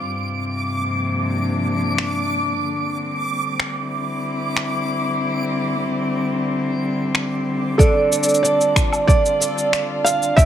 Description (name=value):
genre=folktronica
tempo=93 BPM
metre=4/4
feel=straight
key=D minor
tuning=A4 = 438 Hz
part: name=muted string quartet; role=sustained chords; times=0.0-10.5 s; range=G2 to F4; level=-23 LUFS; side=left 2 dB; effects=stereo widening, low-pass filter
part: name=backwards swelling texture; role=texture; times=0.0-7.8 s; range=D6 to D7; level=-27 LUFS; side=right 1 dB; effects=built-in reverb
part: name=electronic finger snaps, cabasa and woodblock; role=drums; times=2.0-10.5 s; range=none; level=-22 LUFS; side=left 1 dB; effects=low-pass filter on perc, low-pass filter on snare
part: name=felt-muted upright piano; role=melody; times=7.8-10.5 s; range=A4 to F5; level=-20 LUFS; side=right 3 dB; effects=digital delay
part: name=vibraphone with medium hard mallets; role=second line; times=7.8-10.5 s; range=D5 to A5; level=-22 LUFS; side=right 3 dB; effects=digital delay
part: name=picked twelve-string acoustic guitar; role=arpeggios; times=7.8-10.5 s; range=G2 to A4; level=-22 LUFS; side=right 2 dB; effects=digital delay
part: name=electronic kick drum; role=drums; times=7.8-10.5 s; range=none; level=-15 LUFS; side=equal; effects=none
room=moderate plate reverb, RT60 1.3 s, small room ambience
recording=none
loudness=-18 LUFS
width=side -10 dB against mid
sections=0.0-7.8 A section; 7.8-10.5 B section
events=filter sweep on string quartet 0.0-7.8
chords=0.1 Gm; 2.6 Bb6; 5.2 C; 7.8 Dm